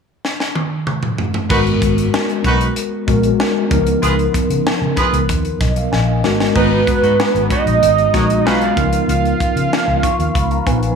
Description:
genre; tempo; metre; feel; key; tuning
polished 1980s jazz-funk pop; 95 BPM; 4/4; straight; G# dorian; A4 = 439 Hz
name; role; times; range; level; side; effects
crisp fusion drum kit; drums; 0.2-11.0 s; crash cymbal, hi-hat, kick drum, snare drum, toms; -20 LUFS; equal; gated reverb
warm horn section; second line; 1.5-8.7 s; D#4 to D#5; -22 LUFS; right 2 dB; none
mellow tine electric piano; accompaniment; 1.5-11.0 s; E#3 to C#6; -18 LUFS; left 2 dB; medium stereo tremolo, analog chorus
vintage muted fingered electric bass; bass; 1.5-10.9 s; G#1 to C#3; -18 LUFS; equal; none
fat analog lead; melody; 6.6-10.9 s; B4 to E#5; -16 LUFS; right 4 dB; chorus, phaser, slapback echo
room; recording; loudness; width
moderate spring reverb, RT60 2.0 s; small room ambience; -13 LUFS; side -6 dB against mid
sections
0.0-1.5 A section; 1.5-6.6 B section; 6.6-11.0 C section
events
drum fill 0.2-1.5, 5.9-6.6; tine electric piano fill 9.7-11.0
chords
0.0 N.C.; 1.5 G#m9; 3.7 C#13; 6.2 G#m9; 8.8 C#13

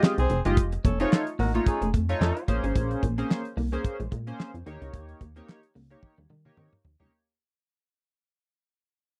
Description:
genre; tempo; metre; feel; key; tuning
early-eighties boogie funk; 110 BPM; 4/4; swing 56% on 16ths; unclear; A4 = 439 Hz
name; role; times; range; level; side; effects
chorused polysynth; accompaniment; 0.0-7.1 s; Ab3 to Eb5; -32 LUFS; equal; none
electric guitar at the edge of break-up; riff; 0.0-7.1 s; G3 to Eb4; -36 LUFS; equal; ensemble chorus
damped 70s drum kit; drums; 0.0-7.1 s; handclaps, hi-hat, kick drum, snare drum, toms; -26 LUFS; equal; none
mellow horn section; second line; 0.2-2.4 s; C4 to C#5; -32 LUFS; equal; none
plucky analog bass; bass; 0.2-7.1 s; F1 to Eb3; -31 LUFS; equal; none
room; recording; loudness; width
little or no reverb; dry, close 1970s-style studio recording; -26 LUFS; mono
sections
0.0-7.1 A section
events
fade-out 0.0-7.1; drum fill 6.0-7.1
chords
0.0 Fm9; 0.6 F7b13; 2.5 Bbm9; 4.7 Eb7

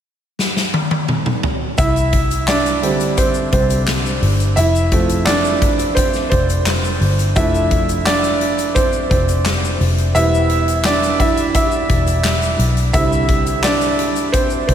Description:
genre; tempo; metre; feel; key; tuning
piano-driven pop; 86 BPM; 4/4; straight; C major; A4 = 438 Hz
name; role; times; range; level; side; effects
huge arena drum kit; drums; 0.4-14.7 s; handclaps, hi-hat, kick drum, snare drum, toms; -19 LUFS; left 1 dB; none
clear upright piano; accompaniment; 1.8-14.7 s; D3 to E5; -17 LUFS; right 2 dB; none
vintage muted picked electric bass; bass; 1.8-14.7 s; E1 to C2; -19 LUFS; equal; none
tube shaker; percussion; 1.8-14.7 s; none; -33 LUFS; left 8 dB; none
room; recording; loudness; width
moderate huge ambient reverb, RT60 4.8 s; dreamy mix soaked in reverb; -14 LUFS; side -9 dB against mid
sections
0.0-1.8 A section; 1.8-14.7 B section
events
drum fill 0.4-1.8; upright piano solo 1.8-14.7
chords
0.0 N.C.; 1.8 Csus2; 4.6 F; 7.4 Dm/F; 10.2 Em; 12.9 Csus2

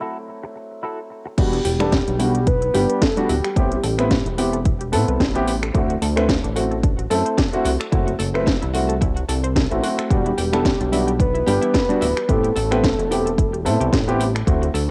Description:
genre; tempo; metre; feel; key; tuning
nu-disco, nu disco; 110 BPM; 4/4; swing 56% on 16ths; E minor; A4 = 440 Hz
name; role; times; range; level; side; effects
dark concert grand piano; accompaniment; 0.0-14.6 s; F#3 to B4; -25 LUFS; equal; sidechain pumping, cassette tape
direct-recorded clean electric guitar; riff; 0.0-1.3 s; E4 to A4; -33 LUFS; equal; subtle chorus, low-pass filter, cassette tape, analog delay
soft octave-layered synth lead; melody; 1.4-4.4, 10.1-13.9 s; G4 to B4; -26 LUFS; equal; chorus, cassette tape, tape echo
analog pluck; arpeggios; 1.4-14.8 s; D4 to E5; -33 LUFS; equal; chorus, sidechain pumping, cassette tape, tape echo
chorused synth bass; bass; 1.4-14.9 s; D1 to A2; -25 LUFS; equal; none
electronic kick drum; drums; 1.4-14.6 s; none; -23 LUFS; equal; none
house drum kit; drums; 1.4-14.9 s; crash cymbal, finger snaps, hi-hat, snare drum; -28 LUFS; equal; low-pass filter on hats, low-pass filter on cymbals, low-pass filter on snare
room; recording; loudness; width
light reverb; home recording on cassette; -20 LUFS; mono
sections
0.0-1.4 A section; 1.4-14.9 B section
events
filter sweep on grand piano 0.0-1.4; drop 1.4-14.9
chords
0.0 F#m7b5; 1.4 Em7; 3.6 Am9; 5.7 D7; 7.9 F#m7b5; 10.1 Em7; 12.3 Am9

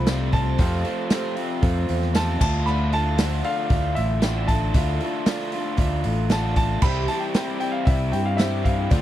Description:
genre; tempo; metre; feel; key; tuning
folk rock and heartland rock; 116 BPM; 4/4; straight; D minor; A4 = 440 Hz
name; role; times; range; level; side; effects
warm grand piano; melody; 0.0-9.0 s; E5 to B5; -29 LUFS; equal; none
picked twelve-string acoustic guitar; accompaniment; 0.0-9.0 s; F2 to G4; -31 LUFS; left 1 dB; lush chorus
crunchy overdriven guitar; riff; 0.0-9.0 s; F2 to F4; -28 LUFS; left 1 dB; none
fingered electric bass; bass; 0.0-9.0 s; A1 to G2; -24 LUFS; equal; none
dark upright piano; accompaniment; 0.1-9.0 s; F4 to G5; -36 LUFS; right 6 dB; none
natural country drum kit; drums; 0.1-9.0 s; crash cymbal, hi-hat, kick drum, snare drum; -23 LUFS; equal; none
tambourine; percussion; 0.1-8.5 s; none; -39 LUFS; left 8 dB; none
room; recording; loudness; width
little or no reverb; dry, close 1970s-style studio recording; -20 LUFS; side -12 dB against mid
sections
0.0-9.0 A section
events
none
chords
0.0 F; 2.4 Dmadd9; 6.8 C

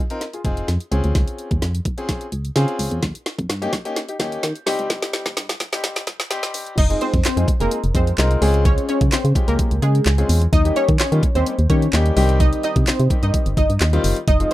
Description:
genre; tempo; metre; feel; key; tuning
dance-pop; 128 BPM; 4/4; straight; F minor; A4 = 439 Hz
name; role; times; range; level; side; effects
clear concert grand piano; accompaniment; 0.1-14.5 s; Eb3 to F5; -25 LUFS; left 2 dB; sidechain pumping
smooth R&B drum kit; drums; 0.1-14.5 s; crash cymbal, handclaps, hi-hat, kick drum, snare drum; -20 LUFS; equal; none
organ-like FM bass; bass; 0.4-14.5 s; F1 to Eb3; -19 LUFS; equal; sidechain pumping
analog pluck; melody; 6.8-14.5 s; Ab3 to Eb5; -23 LUFS; equal; chorus, sidechain pumping
room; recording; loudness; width
light reverb; rough home demo mix, high-pass filter; -17 LUFS; side -15 dB against mid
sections
0.0-6.8 A section; 6.8-14.5 B section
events
build-up 0.0-6.8; drum fill 0.0-6.8; filter sweep 0.0-6.8; grand piano fill 2.3-3.0; drop 6.8-14.5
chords
0.0 Fm7; 0.9 Dbmaj7; 3.0 Eb7; 4.7 Cm; 6.8 Fm7; 8.4 Dbmaj7; 10.5 Eb7; 12.2 Cm

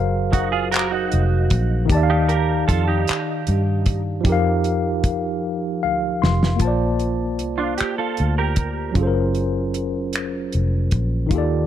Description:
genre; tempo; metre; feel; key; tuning
slow six-eight R&B; 51 BPM (dotted quarters); 6/8; straight; Bb major; A4 = 440 Hz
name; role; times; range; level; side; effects
mellow tine electric piano; accompaniment; 0.0-11.7 s; Eb3 to C6; -22 LUFS; left 1 dB; medium stereo tremolo
vintage muted fingered electric bass; bass; 0.0-11.7 s; F1 to G2; -22 LUFS; equal; none
semi-hollow electric guitar; second line; 0.3-4.0, 7.6-8.9 s; D4 to Bb4; -24 LUFS; right 8 dB; ensemble chorus
damped 70s drum kit; drums; 0.3-11.5 s; finger snaps, handclaps, hi-hat, kick drum, snare drum; -21 LUFS; equal; none
room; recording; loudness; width
small room ambience; dark, warm production; -18 LUFS; side -11 dB against mid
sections
0.0-6.6 A section; 6.6-11.7 B section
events
drum fill 5.4-6.6; tine electric piano fill 5.4-6.6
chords
0.0 Gbmaj9#11; 1.9 Ebmaj9#11; 4.3 F7sus4; 6.6 Bbmaj9; 9.0 Gbmaj9#11

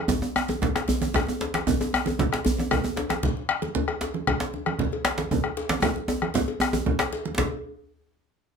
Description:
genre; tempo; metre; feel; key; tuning
west african traditional, West African drum ensemble; 154 BPM (dotted quarters); 12/8; straight; none; none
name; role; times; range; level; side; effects
bombo; percussion; 0.1-7.5 s; none; -28 LUFS; left 2 dB; none
congas; percussion; 0.1-7.5 s; none; -30 LUFS; right 7 dB; none
djembe; percussion; 0.1-7.5 s; none; -33 LUFS; left 5 dB; none
djembe; percussion; 0.1-7.5 s; none; -27 LUFS; right 2 dB; none
cowbell; percussion; 0.5-7.5 s; none; -33 LUFS; left 4 dB; none
room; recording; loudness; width
moderate studio reverb, RT60 0.5 s; none; -23 LUFS; side -6 dB against mid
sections
0.0-7.4 A section; 7.4-8.6 B section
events
drum fill 5.8-7.4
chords
none

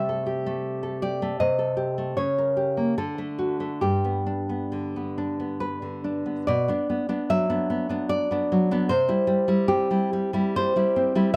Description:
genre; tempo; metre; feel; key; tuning
romantic piece for solo classical guitar; 65-82 BPM; 3/4; rubato; unclear; A4 = 439 Hz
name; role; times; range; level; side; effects
nylon-string guitar; solo; 0.0-11.4 s; G2 to E5; -25 LUFS; equal; none
room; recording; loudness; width
light reverb; close, detailed microphones; -25 LUFS; mono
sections
0.0-6.5 A section; 6.5-11.4 B section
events
none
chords
0.0 Am7/C; 2.2 Gdim/Db; 3.0 D; 3.8 G; 6.5 Bm; 8.9 C

